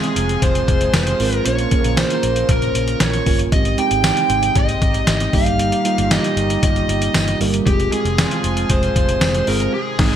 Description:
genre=1980s-style pop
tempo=116 BPM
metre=4/4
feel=straight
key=unclear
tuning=A4 = 440 Hz
part: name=bluesy overdriven lead guitar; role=melody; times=0.0-10.2 s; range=G4 to G5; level=-21 LUFS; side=equal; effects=distortion
part: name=mellow tine electric piano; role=accompaniment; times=0.0-10.2 s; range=G3 to Bb4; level=-22 LUFS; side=right 4 dB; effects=lush chorus
part: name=chorused pulse-width pad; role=sustained chords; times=0.0-10.2 s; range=Bb2 to Bb4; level=-27 LUFS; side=equal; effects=none
part: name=trip hop sampler-style drum kit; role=drums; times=0.0-10.2 s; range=crash cymbal, hi-hat, kick drum, snare drum, tambourine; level=-19 LUFS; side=equal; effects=overdrive
part: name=vintage muted fingered electric bass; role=bass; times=0.2-10.2 s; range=F1 to Bb1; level=-22 LUFS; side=left 1 dB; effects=none
room=moderate plate reverb, RT60 2.5 s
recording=bright 1980s-style digital production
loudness=-15 LUFS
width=side -10 dB against mid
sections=0.0-10.2 A section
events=band accent 9.7-10.2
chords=0.0 Fm; 1.5 Bbm; 3.5 Abmaj7; 5.3 Eb/G; 7.7 Fm

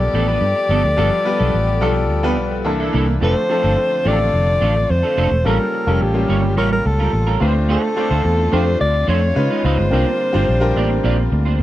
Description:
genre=pop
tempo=107 BPM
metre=4/4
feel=straight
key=unclear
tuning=A4 = 440 Hz
part: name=breathy alto saxophone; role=melody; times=0.0-11.3 s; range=G4 to D5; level=-20 LUFS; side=left 1 dB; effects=none
part: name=clear concert grand piano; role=accompaniment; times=0.0-11.6 s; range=E3 to C5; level=-22 LUFS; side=left 2 dB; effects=wide subtle chorus
part: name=warm chamber string section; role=sustained chords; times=0.0-11.6 s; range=C#3 to A4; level=-28 LUFS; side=left 2 dB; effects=none
part: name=clean electric guitar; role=riff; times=0.0-11.6 s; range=F3 to D5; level=-23 LUFS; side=right 4 dB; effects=analog chorus
part: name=vintage muted fingered electric bass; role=bass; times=0.0-11.6 s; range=E1 to C#3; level=-18 LUFS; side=equal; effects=none
room=little or no reverb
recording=dry, close 1970s-style studio recording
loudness=-15 LUFS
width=side -14 dB against mid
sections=0.0-3.2 A section; 3.2-11.6 B section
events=none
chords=0.0 G9; 2.7 C13; 3.2 F6; 5.5 A7b9b13; 7.4 Dm7; 9.4 C#9; 9.9 C9sus4

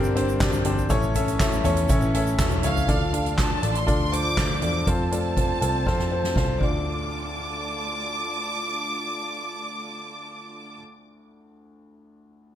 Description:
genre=piano-driven pop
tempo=121 BPM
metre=4/4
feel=straight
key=D minor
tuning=A4 = 440 Hz
part: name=clear upright piano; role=accompaniment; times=0.0-12.6 s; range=D2 to E5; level=-27 LUFS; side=left 2 dB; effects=none
part: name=warm studio string section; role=sustained chords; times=0.0-10.8 s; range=D3 to A5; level=-36 LUFS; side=right 3 dB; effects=none
part: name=vintage muted picked electric bass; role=bass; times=0.0-10.8 s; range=E1 to F2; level=-27 LUFS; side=right 1 dB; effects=none
part: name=egg shaker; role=percussion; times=0.0-2.9 s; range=none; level=-41 LUFS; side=right 13 dB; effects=none
part: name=soft-mallet drum kit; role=drums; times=0.2-6.7 s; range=handclaps, hi-hat, kick drum, ride cymbal, snare drum, toms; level=-26 LUFS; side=right 1 dB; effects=none
part: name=rich studio violin section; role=melody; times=2.6-10.8 s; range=F5 to D6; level=-29 LUFS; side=right 1 dB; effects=none
room=studio reverb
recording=none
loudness=-22 LUFS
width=side -11 dB against mid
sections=0.0-2.9 A section; 2.9-6.9 B section; 6.9-10.8 C section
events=drum fill 5.9-6.9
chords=0.0 Csus2/G; 0.9 A; 2.9 Dm; 4.9 F; 6.6 Dm

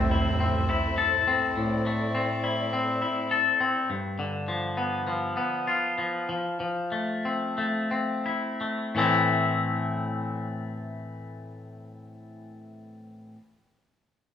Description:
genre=rock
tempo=82-104 BPM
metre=4/4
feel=straight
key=A minor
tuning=A4 = 439 Hz
part: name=warm symphonic string section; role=sustained chords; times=0.0-3.9 s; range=A2 to E5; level=-34 LUFS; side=equal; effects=none
part: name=twangy electric guitar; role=arpeggios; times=0.0-13.4 s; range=G2 to A4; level=-26 LUFS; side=left 2 dB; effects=spring reverb
room=moderate large studio reverb, RT60 1.1 s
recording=band playing live in one room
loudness=-24 LUFS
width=side -9 dB against mid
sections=0.0-9.0 A section; 9.0-11.9 B section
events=slowing down 3.9-9.0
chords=0.0 Am; 3.9 G7; 6.3 Fmaj7; 9.0 Am

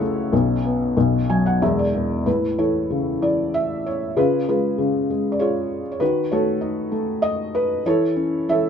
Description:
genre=classical, lyrical solo piano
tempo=96 BPM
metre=3/4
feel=uneven beats, rubato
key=A major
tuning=A4 = 440 Hz
part: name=felt-muted upright piano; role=solo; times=0.0-8.7 s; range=E1 to G#5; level=-18 LUFS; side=left 1 dB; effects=none
room=light reverb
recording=minimal, uncompressed stereo recording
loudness=-19 LUFS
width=side -7 dB against mid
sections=0.0-2.3 A section; 2.3-8.7 B section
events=felt piano fill 1.0-2.3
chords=0.3 Aadd9/B; 1.0 B5; 1.6 E5; 2.3 A; 4.2 C#7; 6.0 D#m7b5; 7.9 A/E

